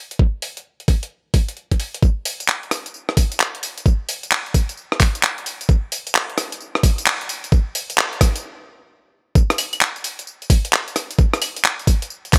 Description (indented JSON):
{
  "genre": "UK garage",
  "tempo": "131 BPM",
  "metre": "4/4",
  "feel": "swing 64% on 16ths",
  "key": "none",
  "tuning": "none",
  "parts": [
    { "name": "breakbeat sampler-style drum kit", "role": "drums", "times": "0.1-12.4 s", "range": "claves, handclaps, hi-hat, rim click, tambourine", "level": "-23 LUFS", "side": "equal", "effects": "none" },
    { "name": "electronic kick drum", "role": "drums", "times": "0.2-12.4 s", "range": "none", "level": "-17 LUFS", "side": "equal", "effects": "none" }
  ],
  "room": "light reverb",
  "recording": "none",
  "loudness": "-20 LUFS",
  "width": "mono",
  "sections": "0.0-2.0 A section; 2.0-9.4 B section; 9.4-12.4 C section",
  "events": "build-up 2.0-9.4; stop 8.4-9.4; drop 9.4-12.4",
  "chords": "none"
}